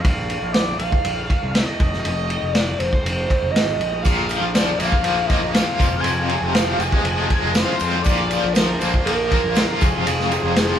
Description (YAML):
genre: psychedelic rock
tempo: 120 BPM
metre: 4/4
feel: straight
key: F dorian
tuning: A4 = 440 Hz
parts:
  - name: overdriven synth lead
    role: melody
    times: 0.0-10.8 s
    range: Ab4 to Ab5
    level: -24 LUFS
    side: equal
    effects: phaser
  - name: fuzz picked electric bass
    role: bass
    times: 0.0-10.7 s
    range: F1 to F2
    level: -26 LUFS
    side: equal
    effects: overdrive
  - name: vintage drum kit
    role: drums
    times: 0.0-10.7 s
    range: kick drum, ride cymbal, snare drum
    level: -20 LUFS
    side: equal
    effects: none
  - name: combo organ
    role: sustained chords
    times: 4.0-10.8 s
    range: F3 to Bb4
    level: -32 LUFS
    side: right 2 dB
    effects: none
  - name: tambourine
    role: percussion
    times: 4.0-10.7 s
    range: none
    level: -38 LUFS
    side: right 7 dB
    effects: none
  - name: biting overdriven guitar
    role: riff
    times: 4.1-10.8 s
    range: F2 to F4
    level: -22 LUFS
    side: left 1 dB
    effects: tremolo
room: light reverb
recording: band playing live in one room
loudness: -17 LUFS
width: side -9 dB against mid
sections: 0.0-10.8 A section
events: none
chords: 0.0 Bb5; 1.8 F5; 4.0 Bb; 5.8 Fm; 8.1 Bb; 9.8 Fm